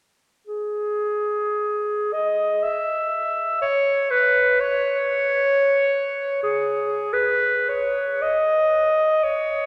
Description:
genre	classical, free, expressive piece for unaccompanied clarinet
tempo	35-62 BPM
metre	3/4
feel	rubato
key	C# minor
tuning	A4 = 440 Hz
part	bright clarinet	solo	0.5-9.7 s	G#4 to E5	-21 LUFS	equal	none
room	wet cathedral reverb, RT60 5.0 s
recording	none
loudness	-21 LUFS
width	mono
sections	0.5-7.1 A section; 7.1-9.7 B section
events	none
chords	none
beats	| 0.48 1.61 2.64 | 3.62 4.61 5.73 | 7.14 8.22 9.23

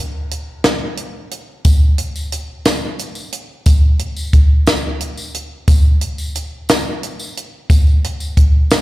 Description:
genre	rock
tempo	60 BPM (dotted quarters)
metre	6/8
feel	straight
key	none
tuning	none
part	compact cocktail drum kit	drums	0.3-8.8 s	hi-hat, kick drum, snare drum	-12 LUFS	equal	none
part	tambourine	percussion	1.6-8.8 s	none	-31 LUFS	left 2 dB	slapback echo
room	little or no reverb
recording	live gig heard through the venue's PA, recital hall reverb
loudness	-13 LUFS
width	side -17 dB against mid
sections	0.0-1.7 A section; 1.7-8.8 B section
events	none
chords	none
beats	0.65 | 1.66 2.66 | 3.67 4.68 | 5.68 6.69 | 7.70 8.71

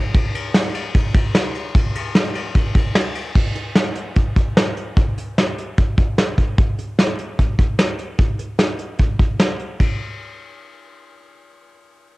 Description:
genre	indie pop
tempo	149 BPM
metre	4/4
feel	straight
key	none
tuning	none
part	soft brush drum kit	drums	0.1-9.9 s	crash cymbal, hi-hat, kick drum, ride cymbal, snare drum	-17 LUFS	equal	vintage 12-bit sampler grit
room	light reverb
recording	home recording on cassette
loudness	-16 LUFS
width	side -21 dB against mid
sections	0.0-3.4 A section; 3.4-9.8 B section; 9.8-12.2 C section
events	none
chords	none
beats	| 0.15 0.55 0.95 1.35 | 1.75 2.15 2.56 2.96 | 3.36 3.76 4.16 4.57 | 4.97 5.37 5.77 6.18 | 6.58 6.98 7.38 7.79 | 8.19 8.59 9.00 9.40 | 9.80

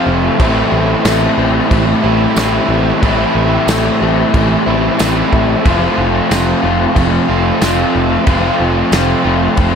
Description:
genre	rock, shoegaze and dream pop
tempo	92 BPM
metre	4/4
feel	straight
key	unclear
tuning	A4 = 440 Hz
part	string machine, cellos	sustained chords	0.0-9.8 s	F4 to A5	-24 LUFS	right 1 dB	none
part	crunchy overdriven guitar	riff	0.0-9.8 s	A2 to F4	-15 LUFS	left 10 dB	analog chorus
part	overdriven electric guitar	riff	0.0-9.8 s	F2 to F4	-16 LUFS	right 9 dB	reverse reverb
part	picked electric bass	bass	0.1-9.8 s	F1 to A1	-18 LUFS	equal	none
part	loose indie drum kit	drums	0.4-9.7 s	crash cymbal, kick drum, snare drum	-19 LUFS	equal	none
part	tambourine	percussion	1.1-9.1 s	none	-28 LUFS	right 10 dB	none
room	light reverb, small room reverb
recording	none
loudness	-10 LUFS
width	side -7 dB against mid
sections	0.0-9.8 A section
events	none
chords	0.4 Am7; 5.6 Fmaj7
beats	| 0.40 1.06 1.71 2.37 | 3.02 3.68 4.34 4.99 | 5.65 6.30 6.96 7.62 | 8.27 8.93 9.58

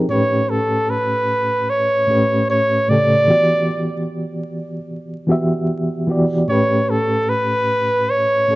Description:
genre	R&B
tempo	75 BPM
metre	4/4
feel	swing 64% on 16ths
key	unclear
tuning	A4 = 440 Hz
part	reed electric piano	accompaniment	0.0-8.6 s	A2 to E5	-19 LUFS	equal	fast tremolo
part	clear flugelhorn	melody	0.1-8.6 s	A4 to D5	-16 LUFS	equal	slapback echo
room	moderate plate reverb, RT60 3.0 s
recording	dark, warm production, vinyl crackle, nothing above 7.9 kHz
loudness	-15 LUFS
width	side -18 dB against mid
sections	0.1-8.6 A section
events	none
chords	0.1 A7; 3.3 Em7; 6.5 A7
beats	| 0.08 0.88 1.68 2.48 | 3.28 4.08 4.88 5.68 | 6.48 7.28 8.08

